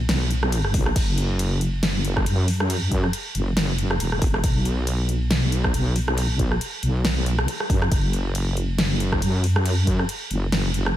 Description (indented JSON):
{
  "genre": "deep dubstep",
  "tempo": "138 BPM",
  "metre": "4/4",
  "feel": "swing 56% on 16ths, half-time",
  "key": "unclear",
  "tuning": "A4 = 440 Hz",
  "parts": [
    { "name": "wobble bass", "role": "bass", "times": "0.0-10.9 s", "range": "E1 to F#2", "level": "-22 LUFS", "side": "equal", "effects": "chorus" },
    { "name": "deep house drum kit", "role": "drums", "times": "0.1-10.9 s", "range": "crash cymbal, hi-hat, rim click, snare drum", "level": "-26 LUFS", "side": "equal", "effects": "none" },
    { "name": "electronic kick drum", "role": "drums", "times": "0.7-10.0 s", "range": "none", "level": "-24 LUFS", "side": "equal", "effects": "none" }
  ],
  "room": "light reverb",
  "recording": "none",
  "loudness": "-20 LUFS",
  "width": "side -12 dB against mid",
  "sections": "0.0-11.0 A section",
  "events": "none",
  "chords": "none",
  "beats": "0.09 0.52 | 0.96 1.39 1.83 2.26 | 2.70 3.13 3.57 4.00 | 4.44 4.87 5.31 5.74 | 6.18 6.61 7.04 7.48 | 7.92 8.35 8.79 9.22 | 9.65 10.09 10.52"
}